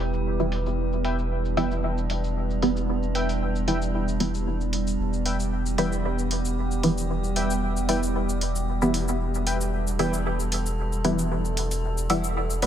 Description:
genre	dub techno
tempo	114 BPM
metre	4/4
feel	swing 54% on 16ths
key	E minor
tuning	A4 = 440 Hz
part	deep dark ambient pad	sustained chords	0.0-12.7 s	G3 to F#5	-31 LUFS	right 3 dB	chorus, built-in reverb
part	soft dub sub bass	bass	0.0-12.7 s	E1	-28 LUFS	equal	none
part	metallic inharmonic drone	texture	0.0-12.7 s	G3 to A4	-34 LUFS	equal	chorus, built-in reverb
part	electronic cabasa and hi-hat	drums	0.1-12.7 s	none	-33 LUFS	equal	overdrive, low-pass filter on snare, low-pass filter on perc, low-pass filter on hats
part	filtered dub chord stab	stabs	0.4-12.7 s	E3 to E4	-28 LUFS	equal	chorus, phaser, dub echo
part	warbly lo-fi synth keys	riff	1.0-10.2 s	B4 to G5	-34 LUFS	left 2 dB	chorus, dub echo
room	light reverb, digital ambience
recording	none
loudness	-23 LUFS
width	side -10 dB against mid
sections	0.0-12.7 A section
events	none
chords	0.0 Em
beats	0.26 | 0.78 1.31 1.83 2.36 | 2.89 3.41 3.94 4.47 | 4.99 5.52 6.05 6.57 | 7.10 7.62 8.15 8.68 | 9.20 9.73 10.26 10.78 | 11.31 11.84 12.36

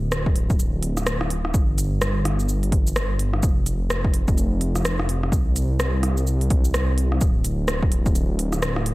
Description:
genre	future garage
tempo	127 BPM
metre	4/4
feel	swing 60% on 16ths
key	D minor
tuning	A4 = 440 Hz
part	swelling detuned saw bass	bass	0.0-8.9 s	D1 to C2	-22 LUFS	equal	sidechain pumping
part	organic electronic drum kit	drums	0.1-8.9 s	hi-hat, rim click, shaker	-27 LUFS	equal	none
part	electronic kick drum	drums	0.3-8.1 s	none	-21 LUFS	equal	overdrive
room	little or no reverb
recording	none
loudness	-19 LUFS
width	side -19 dB against mid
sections	0.0-8.9 A section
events	none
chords	none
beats	0.12 0.60 1.07 | 1.54 2.01 2.49 2.96 | 3.43 3.90 4.38 4.85 | 5.32 5.79 6.26 6.74 | 7.21 7.68 8.15 8.63

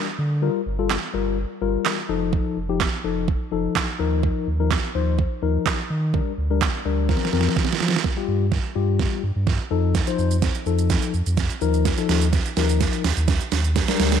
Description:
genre	dance-pop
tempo	126 BPM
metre	4/4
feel	straight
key	unclear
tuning	A4 = 440 Hz
part	mellow tine electric piano	accompaniment	0.0-14.2 s	F3 to C5	-25 LUFS	left 10 dB	auto-pan, sidechain pumping
part	sub bass with octave	bass	0.2-14.2 s	F1 to F3	-22 LUFS	equal	sidechain pumping
part	pop drum kit	drums	0.9-14.2 s	handclaps, hi-hat, kick drum, shaker, snare drum	-23 LUFS	right 5 dB	overdrive
room	moderate echo chamber reverb, RT60 1.8 s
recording	1960s-style stereo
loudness	-20 LUFS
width	side -8 dB against mid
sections	0.0-8.0 A section; 8.0-14.2 B section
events	drum fill 7.1-8.0, 8.0-14.2; build-up 8.0-14.2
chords	0.4 Gm7; 2.1 F7; 4.0 Ebsus2; 6.1 Bb6/D; 7.1 Fsus4; 8.0 Fsus2/G; 9.7 F7; 11.6 Ebsus2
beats	| 0.42 0.90 1.38 1.85 | 2.33 2.81 3.28 3.76 | 4.23 4.71 5.19 5.66 | 6.14 6.62 7.09 7.57 | 8.04 8.52 9.00 9.47 | 9.95 10.43 10.90 11.38 | 11.85 12.33 12.81 13.28 | 13.76

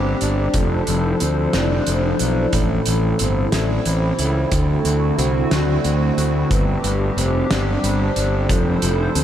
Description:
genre	post-rock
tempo	60 BPM (dotted quarters)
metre	6/8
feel	straight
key	unclear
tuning	A4 = 440 Hz
part	hollow soft pad	sustained chords	0.0-9.2 s	D3 to C5	-24 LUFS	equal	ensemble chorus
part	mellow electric guitar	arpeggios	0.0-9.2 s	G2 to F#4	-24 LUFS	left 3 dB	analog delay
part	vibraphone with medium mallets	arpeggios	0.0-9.2 s	A4 to D5	-26 LUFS	right 3 dB	analog delay
part	fuzz fingered electric bass	bass	0.0-9.2 s	F1 to D2	-20 LUFS	equal	overdrive
part	loose indie drum kit	drums	0.2-9.2 s	hi-hat, kick drum, snare drum	-24 LUFS	equal	none
room	moderate huge ambient reverb, RT60 7.4 s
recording	dreamy mix soaked in reverb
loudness	-16 LUFS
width	side -10 dB against mid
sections	0.0-9.2 A section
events	none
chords	0.0 Gsus4; 0.5 Dm7/F; 2.5 Am; 4.5 D7; 6.5 Gsus4; 8.5 Dm7/F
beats	| 0.55 1.54 | 2.54 3.53 | 4.52 5.52 | 6.51 7.50 | 8.50

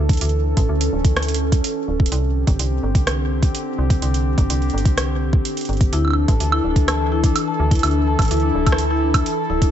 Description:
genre	IDM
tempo	126 BPM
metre	4/4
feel	straight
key	unclear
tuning	A4 = 439 Hz
part	warbly tape-like pad	sustained chords	0.0-9.7 s	D3 to A4	-24 LUFS	equal	chorus, built-in reverb
part	metallic FM bass	bass	0.0-9.7 s	D1 to D2	-21 LUFS	equal	none
part	booming analog drum machine	drums	0.1-9.7 s	hi-hat, rim click, woodblock	-25 LUFS	right 3 dB	tape echo
part	electronic kick drum	drums	0.1-9.7 s	none	-17 LUFS	equal	overdrive
part	vibraphone with soft mallets	arpeggios	5.9-9.7 s	D4 to A5	-22 LUFS	left 5 dB	vintage 12-bit sampler grit, tape echo
room	little or no reverb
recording	nothing above 7.9 kHz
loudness	-16 LUFS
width	side -10 dB against mid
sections	0.0-9.7 A section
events	none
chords	0.0 Dsus2; 2.1 Csus2; 5.9 Dsus2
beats	| 0.21 0.69 1.17 1.64 | 2.12 2.59 3.07 3.55 | 4.02 4.50 4.97 5.45 | 5.93 6.40 6.88 7.36 | 7.83 8.31 8.78 9.26

